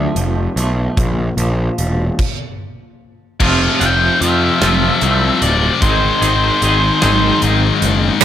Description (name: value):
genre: quiet-loud alternative rock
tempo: 50 BPM (dotted quarters)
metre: 6/8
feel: straight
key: unclear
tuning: A4 = 440 Hz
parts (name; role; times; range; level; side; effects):
- twangy electric guitar; arpeggios; 0.0-8.2 s; F2 to Ab4; -20 LUFS; right 3 dB; tremolo
- fuzz picked electric bass; bass; 0.0-8.2 s; D1 to F2; -17 LUFS; equal; overdrive
- big rock drum kit; drums; 0.2-8.2 s; crash cymbal, hi-hat, kick drum, snare drum; -21 LUFS; equal; none
- scooped high-gain guitar; riff; 3.4-8.2 s; F2 to Ab3; -16 LUFS; left 8 dB; distortion
- octave-fuzz lead guitar; melody; 3.8-7.4 s; C5 to G5; -18 LUFS; left 1 dB; distortion, analog delay
- heavy high-gain guitar; riff; 8.2 s; G2; -6 LUFS; right 14 dB; distortion
room: little or no reverb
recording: none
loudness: -12 LUFS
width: side -10 dB against mid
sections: 0.0-3.4 A section; 3.4-8.2 B section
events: stop 2.2-3.4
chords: 0.0 F; 1.0 Bb5; 3.4 F; 5.8 Ab